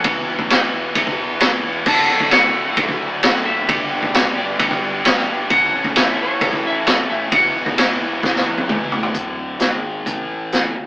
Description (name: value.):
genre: classic rock.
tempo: 132 BPM.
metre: 4/4.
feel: straight.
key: D major.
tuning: A4 = 440 Hz.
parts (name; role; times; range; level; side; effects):
clean lap steel guitar; melody; 0.0-8.7 s; C#5 to A5; -19 LUFS; equal; none.
cranked stack guitar; riff; 0.0-9.1 s; D2 to A4; -28 LUFS; right 1 dB; none.
distorted electric guitar; riff; 0.0-10.9 s; D2 to A4; -23 LUFS; left 1 dB; distortion.
fuzz guitar; riff; 0.0-9.1 s; D2 to A4; -32 LUFS; equal; none.
growling picked electric bass; bass; 0.0-10.9 s; D1 to A1; -34 LUFS; equal; overdrive.
vintage drum kit; drums; 0.0-10.6 s; crash cymbal, hi-hat, kick drum, ride cymbal, snare drum, toms; -17 LUFS; equal; none.
room: moderate studio reverb, RT60 0.6 s.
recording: rough rehearsal-room recording, AM radio sound.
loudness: -15 LUFS.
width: side -22 dB against mid.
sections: 0.0-9.2 A section; 9.2-10.9 B section.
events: drum fill 8.2-9.2.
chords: 0.0 Esus2; 1.9 D; 3.7 G; 5.5 A; 7.3 Esus2; 9.2 D5; 9.6 G#5; 10.1 A5.